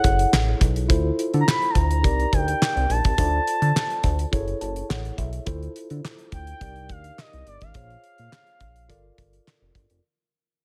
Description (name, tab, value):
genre	early-eighties boogie funk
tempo	105 BPM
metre	4/4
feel	straight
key	G minor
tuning	A4 = 440 Hz
part	gliding portamento lead	melody	0.0-9.8 s	D5 to B5	-28 LUFS	equal	chorus, phaser, slapback echo
part	mellow tine electric piano	accompaniment	0.0-10.0 s	Eb4 to A5	-32 LUFS	equal	none
part	chorused synth bass	bass	0.0-10.0 s	F1 to D3	-27 LUFS	equal	none
part	damped 70s drum kit	drums	0.0-10.0 s	handclaps, hi-hat, kick drum, snare drum	-25 LUFS	equal	gated reverb
room	small room ambience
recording	none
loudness	-22 LUFS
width	mono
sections	0.0-10.0 A section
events	fade-out 0.0-10.0; tine electric piano fill 4.3-5.5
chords	0.0 F#m9; 0.9 Dm9; 2.0 Cm9; 3.2 Dm7; 4.3 F#m9; 5.5 Dm9; 6.6 Cm9; 7.8 Bbm9; 8.9 Gm9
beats	0.33 | 0.90 1.47 2.04 2.61 | 3.18 3.75 4.33 4.90 | 5.47 6.04 6.61 7.18 | 7.75 8.33 8.90 9.47